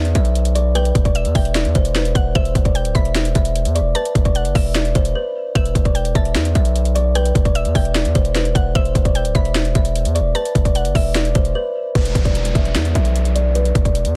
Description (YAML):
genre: hip hop, trap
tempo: 150 BPM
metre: 4/4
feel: half-time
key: E minor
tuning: A4 = 439 Hz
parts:
  - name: kalimba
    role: melody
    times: 0.0-14.1 s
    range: B4 to E5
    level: -25 LUFS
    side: equal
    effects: low-pass filter
  - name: distorted 808-style bass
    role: bass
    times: 0.0-14.1 s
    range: D1 to E2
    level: -21 LUFS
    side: equal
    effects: distortion
  - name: trap drum kit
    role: drums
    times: 0.1-14.1 s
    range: hi-hat, kick drum, snare drum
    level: -20 LUFS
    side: equal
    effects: none
  - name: mallet-like synth pluck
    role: second line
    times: 0.8-11.9 s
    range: E5 to B5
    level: -31 LUFS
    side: equal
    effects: chorus, tape echo
  - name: downlifter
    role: sound effects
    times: 12.0-14.2 s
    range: none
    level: -32 LUFS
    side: equal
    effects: none
room: digital ambience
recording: dense, heavily limited modern master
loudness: -17 LUFS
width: mono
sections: 0.0-12.0 A section; 12.0-14.2 B section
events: break 5.2-5.6, 11.6-12.0; filter sweep on kalimba 12.0-14.2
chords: 0.0 Em; 2.4 Dsus4; 4.0 B7sus4/E; 5.6 Em; 8.8 Dsus4; 10.4 B7sus4/E; 12.0 E5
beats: 0.35 | 0.75 1.15 1.55 1.95 | 2.35 2.75 3.15 3.55 | 3.95 4.35 4.75 5.15 | 5.55 5.95 6.35 6.75 | 7.15 7.55 7.95 8.35 | 8.75 9.15 9.55 9.95 | 10.35 10.75 11.15 11.55 | 11.95 12.35 12.75 13.15 | 13.55 13.95